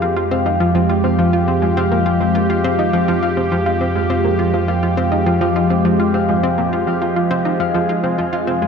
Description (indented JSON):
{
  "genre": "ambient, sequencer-driven space music",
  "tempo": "103 BPM",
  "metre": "4/4",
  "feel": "straight",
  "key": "F minor",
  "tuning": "A4 = 440 Hz",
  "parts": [
    { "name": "phased analog pad", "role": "sustained chords", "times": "0.0-8.7 s", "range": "F3 to Ab4", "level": "-18 LUFS", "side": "right 1 dB", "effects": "phaser, chorus" },
    { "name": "Celtic harp", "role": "arpeggios", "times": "0.0-8.7 s", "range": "C4 to F5", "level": "-22 LUFS", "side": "left 5 dB", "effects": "auto-pan, tape echo, shimmer reverb" },
    { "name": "analog pluck", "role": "riff", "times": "0.0-8.7 s", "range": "F3 to F4", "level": "-20 LUFS", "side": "right 1 dB", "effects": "chorus, tape echo, shimmer reverb" },
    { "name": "analog drone", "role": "bass", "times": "0.0-8.7 s", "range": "F2", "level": "-23 LUFS", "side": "equal", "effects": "chorus" }
  ],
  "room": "wet concert hall reverb, RT60 2.3 s",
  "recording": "dark, warm production",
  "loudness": "-14 LUFS",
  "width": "side -6 dB against mid",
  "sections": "0.0-8.7 A section",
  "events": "none",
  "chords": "0.0 Fmadd9"
}